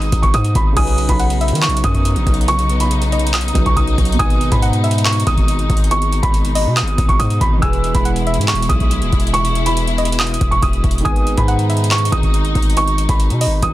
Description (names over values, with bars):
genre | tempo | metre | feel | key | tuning
hip hop, trap | 140 BPM | 4/4 | half-time | G# minor | A4 = 440 Hz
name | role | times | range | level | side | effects
felt-muted upright piano | melody | 0.0-13.7 s | B5 to E6 | -21 LUFS | right 2 dB | low-pass filter, digital delay
dark baby grand piano | accompaniment | 0.0-13.7 s | B2 to B4 | -25 LUFS | right 4 dB | low-pass filter
dark symphonic string section | sustained chords | 0.0-13.7 s | B2 to E4 | -25 LUFS | left 3 dB | none
distorted 808-style bass | bass | 0.0-13.7 s | D#1 to D#3 | -18 LUFS | equal | distortion
booming analog drum machine | drums | 0.0-13.7 s | crash cymbal, handclaps, hi-hat, kick drum | -18 LUFS | equal | overdrive
soft round pluck | second line | 0.8-13.6 s | D#5 to G#5 | -25 LUFS | left 3 dB | chorus, digital delay
room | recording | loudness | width
little or no reverb | dense, heavily limited modern master | -13 LUFS | side -15 dB against mid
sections
0.8-13.7 A section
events
none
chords
0.0 G#m; 0.8 Badd9; 4.2 G#m; 7.6 E; 11.1 G#m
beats
0.34 | 0.77 1.20 1.62 2.05 | 2.48 2.91 3.34 3.77 | 4.20 4.62 5.05 5.48 | 5.91 6.34 6.77 7.20 | 7.62 8.05 8.48 8.91 | 9.34 9.77 10.20 10.62 | 11.05 11.48 11.91 12.34 | 12.77 13.20 13.62